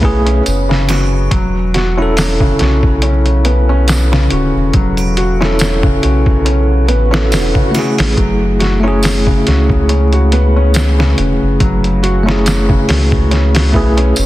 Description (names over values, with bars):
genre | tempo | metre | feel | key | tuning
trip hop | 70 BPM | 4/4 | swing 55% on 16ths | F# minor | A4 = 440 Hz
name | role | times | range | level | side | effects
bell-like tine electric piano | accompaniment | 0.0-14.1 s | A3 to A4 | -18 LUFS | equal | tremolo, vintage 12-bit sampler grit, tape echo
felt-muted upright piano | arpeggios | 0.0-14.3 s | C#3 to F#4 | -17 LUFS | equal | ping-pong delay
soft dub sub bass | bass | 0.0-14.3 s | D1 to C#2 | -13 LUFS | equal | tube saturation
trip hop sampler-style drum kit | drums | 0.0-14.3 s | hi-hat, kick drum, snare drum | -16 LUFS | equal | none
tambourine and triangle | percussion | 0.5-14.3 s | none | -28 LUFS | right 3 dB | none
swell | sound effects | 6.7-8.2 s | none | -26 LUFS | equal | none
room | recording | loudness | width
little or no reverb | dense, heavily limited modern master, vinyl crackle | -10 LUFS | side -16 dB against mid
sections
0.0-14.3 A section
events
swell 6.7-8.2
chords
0.0 F#m9; 1.3 Esus4; 8.2 F#m9